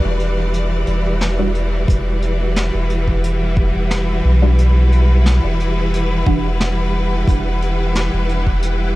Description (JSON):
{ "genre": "ambient dub", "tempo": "89 BPM", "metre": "4/4", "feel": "swing 54% on 16ths", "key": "E minor", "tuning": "A4 = 443 Hz", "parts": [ { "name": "clear studio string section", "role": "sustained chords", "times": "0.0-9.0 s", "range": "E3 to D5", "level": "-21 LUFS", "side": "equal", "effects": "none" }, { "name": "soft dub sub bass", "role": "bass", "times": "0.0-9.0 s", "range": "E1 to B1", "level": "-16 LUFS", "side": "equal", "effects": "none" }, { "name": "wind-like tuned noise texture", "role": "texture", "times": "0.0-9.0 s", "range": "B4 to F#5", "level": "-32 LUFS", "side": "equal", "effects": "built-in reverb" }, { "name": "vintage brush drum kit", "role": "drums", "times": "0.2-8.8 s", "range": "hi-hat, snare drum", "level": "-26 LUFS", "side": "equal", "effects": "dub echo" }, { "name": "filtered dub chord stab", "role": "stabs", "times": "1.4-6.5 s", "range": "E3 to F#4", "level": "-28 LUFS", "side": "right 1 dB", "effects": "phaser, wide subtle chorus, dub echo" }, { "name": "electronic kick drum", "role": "drums", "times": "1.9-8.6 s", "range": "none", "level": "-17 LUFS", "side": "equal", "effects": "none" } ], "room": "small room ambience", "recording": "none", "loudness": "-14 LUFS", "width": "side -18 dB against mid", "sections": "0.0-9.0 A section", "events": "break 0.0-1.9", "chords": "0.0 Em9" }